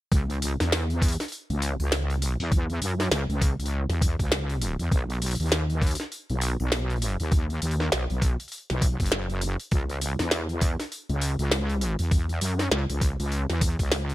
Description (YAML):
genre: glitch hop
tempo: 100 BPM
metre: 4/4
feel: swing 60% on 16ths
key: C# minor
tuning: A4 = 440 Hz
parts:
  - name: wobble bass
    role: bass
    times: 0.1-14.1 s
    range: F#1 to F#2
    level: -26 LUFS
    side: equal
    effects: chorus
  - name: electronic kick drum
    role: drums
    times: 0.1-13.9 s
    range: none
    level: -24 LUFS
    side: equal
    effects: none
  - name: glitchy drum kit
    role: drums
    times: 0.1-14.1 s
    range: hi-hat, snare drum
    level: -29 LUFS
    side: equal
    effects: none
room: little or no reverb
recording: none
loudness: -24 LUFS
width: side -16 dB against mid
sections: 0.1-14.1 A section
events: drop 0.1-14.1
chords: none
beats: | 0.12 0.72 1.32 1.92 | 2.52 3.12 3.72 4.32 | 4.92 5.52 6.12 6.72 | 7.32 7.92 8.52 9.12 | 9.72 10.32 10.92 11.52 | 12.12 12.72 13.32 13.92